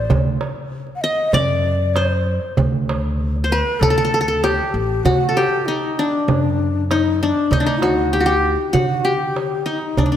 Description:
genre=Turkish makam ensemble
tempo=97 BPM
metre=4/4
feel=straight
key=D makam hicaz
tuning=A4 = 440 Hz
part: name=qanun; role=melody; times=0.0-10.2 s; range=D4 to Eb5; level=-19 LUFS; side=left 1 dB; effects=none
part: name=breathy mellow ney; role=second line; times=0.0-10.2 s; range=D4 to F#5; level=-23 LUFS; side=left 4 dB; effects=none
part: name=upright bass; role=bass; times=0.0-10.2 s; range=A1 to D3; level=-22 LUFS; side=equal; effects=none
part: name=darbuka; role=percussion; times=0.1-10.1 s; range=none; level=-22 LUFS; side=right 3 dB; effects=none
room=moderate concert hall reverb, RT60 2.0 s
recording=none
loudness=-16 LUFS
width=side -10 dB against mid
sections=0.0-7.5 A section; 7.5-10.2 B section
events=none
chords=none

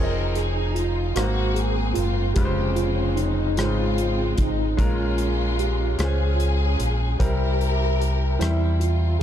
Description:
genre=slow gospel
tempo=50 BPM (dotted quarters)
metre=6/8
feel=straight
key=unclear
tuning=A4 = 440 Hz
part: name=mellow tine electric piano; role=melody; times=0.0-9.2 s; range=Eb4 to Bb4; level=-30 LUFS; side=right 3 dB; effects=medium stereo tremolo
part: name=warm studio string section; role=melody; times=0.0-9.2 s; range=Ab3 to Bb4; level=-28 LUFS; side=left 2 dB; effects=none
part: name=bright grand piano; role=accompaniment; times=0.0-9.2 s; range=Ab2 to F5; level=-28 LUFS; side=equal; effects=none
part: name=deep dub fingered electric bass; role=bass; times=0.0-9.2 s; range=F1 to E2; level=-23 LUFS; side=equal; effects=none
part: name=modern studio drum kit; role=drums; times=0.4-9.0 s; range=hi-hat, kick drum, rim click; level=-27 LUFS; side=equal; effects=none
room=little or no reverb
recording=dark, warm production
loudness=-20 LUFS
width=side -10 dB against mid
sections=0.0-9.2 A section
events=none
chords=0.0 Fm7; 1.2 Ab13; 2.4 Dbmaj7/F; 4.8 Bbm7; 7.2 C7

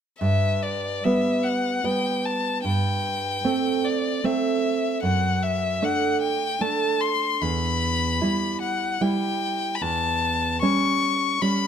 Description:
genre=romantic duo for violin and classical guitar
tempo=75 BPM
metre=3/4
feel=rubato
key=G major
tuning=A4 = 442 Hz
part: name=rich violin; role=melody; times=0.2-11.7 s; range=D5 to C#6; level=-25 LUFS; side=left 5 dB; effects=none
part: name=nylon-string guitar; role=accompaniment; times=0.2-11.7 s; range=E2 to E4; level=-24 LUFS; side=right 3 dB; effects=none
room=moderate recital hall reverb, RT60 1.4 s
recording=close, detailed microphones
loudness=-21 LUFS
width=side -8 dB against mid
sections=0.2-11.7 A section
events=none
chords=0.2 G; 2.6 Am7/G; 5.0 D/F#; 7.4 Em; 9.8 A7/E

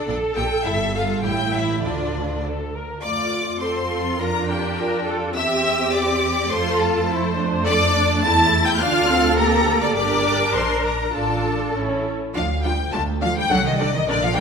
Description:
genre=quick classical-period movement for string orchestra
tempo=104 BPM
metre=2/4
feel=straight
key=D minor, F major from 3.0 s, D minor from 7.7 s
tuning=A4 = 443 Hz
part: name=warm studio violin section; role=melody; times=0.0-14.4 s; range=D5 to A6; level=-24 LUFS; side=left 4 dB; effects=none
part: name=rich chamber violin section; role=second line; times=0.0-14.4 s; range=D4 to A5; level=-25 LUFS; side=left 3 dB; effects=none
part: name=warm symphonic viola section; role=accompaniment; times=0.0-14.4 s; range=A3 to C5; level=-24 LUFS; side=right 1 dB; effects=none
part: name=rich symphonic double bass section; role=bass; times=0.1-14.4 s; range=G1 to F2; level=-26 LUFS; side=right 3 dB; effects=none
part: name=warm chamber cello section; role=bass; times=0.1-14.4 s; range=G2 to Bb4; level=-26 LUFS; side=right 3 dB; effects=none
room=wet scoring stage reverb, RT60 1.6 s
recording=minimal, uncompressed stereo recording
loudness=-18 LUFS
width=side -6 dB against mid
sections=0.0-3.0 A section; 3.0-12.3 B section; 12.3-14.4 C section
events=none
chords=0.1 Gm/Bb; 0.7 Fmaj9/G; 1.2 A5; 1.8 Dm; 3.0 F; 4.2 Gm7/F; 5.4 C/E; 6.5 F; 7.7 Dm/F; 8.2 A5/E; 8.8 Dm; 9.4 Gmadd9/D; 10.0 Gm; 11.1 Dm/A; 11.7 A; 12.3 Dm; 13.5 D7/C

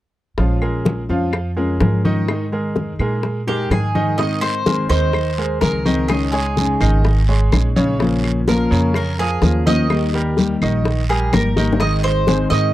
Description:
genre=latin, Cuban son and guajira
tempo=126 BPM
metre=4/4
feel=straight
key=Ab major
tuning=A4 = 440 Hz
part: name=nylon-string guitar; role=accompaniment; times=0.4-12.7 s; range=Db3 to C5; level=-21 LUFS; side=left 3 dB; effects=none
part: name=bright grand piano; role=arpeggios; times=0.4-12.7 s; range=Db3 to F5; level=-24 LUFS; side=right 2 dB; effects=none
part: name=upright bass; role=bass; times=0.4-12.7 s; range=Ab1 to Bb2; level=-20 LUFS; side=right 1 dB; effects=none
part: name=bongos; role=percussion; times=0.4-12.7 s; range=none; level=-23 LUFS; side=left 4 dB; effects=none
part: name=congas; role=percussion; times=0.4-12.7 s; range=none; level=-23 LUFS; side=left 2 dB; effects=none
part: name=claves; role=percussion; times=0.6-12.3 s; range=none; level=-30 LUFS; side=left 3 dB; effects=none
part: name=Cuban tres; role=melody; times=3.5-12.7 s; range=G4 to Eb5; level=-22 LUFS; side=right 2 dB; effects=none
part: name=guiro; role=percussion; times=4.2-12.7 s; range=none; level=-31 LUFS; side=right 6 dB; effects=none
room=light reverb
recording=dry, close 1970s-style studio recording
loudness=-15 LUFS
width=side -14 dB against mid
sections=0.4-4.2 A section; 4.2-12.7 B section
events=drum fill 11.6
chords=0.4 Bbm7; 2.3 Absus2; 4.2 Abadd9; 6.1 Dbsus2; 8.0 Bbmadd9; 9.9 Eb; 11.8 Ab

